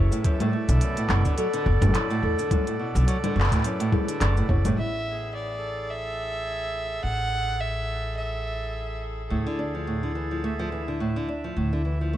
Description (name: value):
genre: folktronica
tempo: 106 BPM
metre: 4/4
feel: swing 56% on 16ths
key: unclear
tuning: A4 = 440 Hz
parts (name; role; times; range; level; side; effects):
- music box; second line; 0.0-4.7 s; E4 to C#5; -33 LUFS; left 3 dB; ping-pong delay
- accordion; sustained chords; 0.0-12.2 s; A2 to E5; -34 LUFS; right 2 dB; none
- nylon-string guitar; arpeggios; 0.0-4.8, 9.3-12.2 s; F#2 to D4; -28 LUFS; right 1 dB; ping-pong delay
- upright bass; bass; 0.0-12.2 s; F#1 to E2; -26 LUFS; equal; none
- organic electronic drum kit; drums; 0.1-4.8 s; congas, handclaps, hi-hat, shaker; -29 LUFS; left 1 dB; none
- electronic kick drum; drums; 0.2-4.6 s; none; -25 LUFS; equal; none
- warm violin; melody; 4.8-9.0 s; D5 to F#5; -30 LUFS; right 2 dB; ping-pong delay
room: light reverb, studio reverb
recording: dark, warm production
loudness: -23 LUFS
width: side -12 dB against mid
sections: 0.0-4.8 A section; 4.8-12.2 B section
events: none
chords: 0.2 Bm7; 4.8 A5; 9.3 Dmadd9